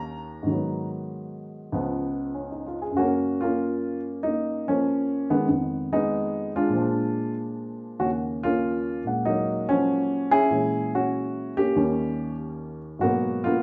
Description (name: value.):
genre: solo jazz.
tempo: 96 BPM.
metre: 4/4.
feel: swing 69% on 8ths.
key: F# major.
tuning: A4 = 440 Hz.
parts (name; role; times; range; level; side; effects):
dark upright piano; solo; 0.0-13.6 s; C#2 to A#5; -26 LUFS; equal; none.
room: wet large studio reverb, RT60 1.1 s.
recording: nothing above 7.8 kHz.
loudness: -26 LUFS.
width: mono.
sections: 0.0-3.0 A section; 3.0-13.6 B section.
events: upright piano solo 0.0-3.0.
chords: 0.5 G#m7; 1.7 C#7; 3.0 F#maj7; 5.5 Fm7b5; 6.7 A#7; 8.0 D#m9; 10.5 A#m7b5; 11.8 D#7; 13.0 G#m9.